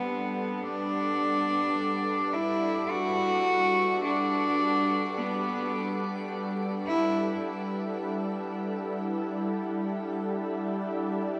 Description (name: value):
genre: ambient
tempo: free time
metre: none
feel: none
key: G major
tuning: A4 = 439 Hz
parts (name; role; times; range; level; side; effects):
- rich cello; melody; 0.0-7.4 s; B3 to F#4; -30 LUFS; equal; delay
- warm analog pad; sustained chords; 0.0-11.4 s; G3 to F#5; -34 LUFS; equal; chorus
room: wet shimmer reverb, RT60 8.1 s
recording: dark, warm production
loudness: -29 LUFS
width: mono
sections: 0.0-11.4 A section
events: none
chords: 0.0 Gmaj9; 7.4 Dsus2/G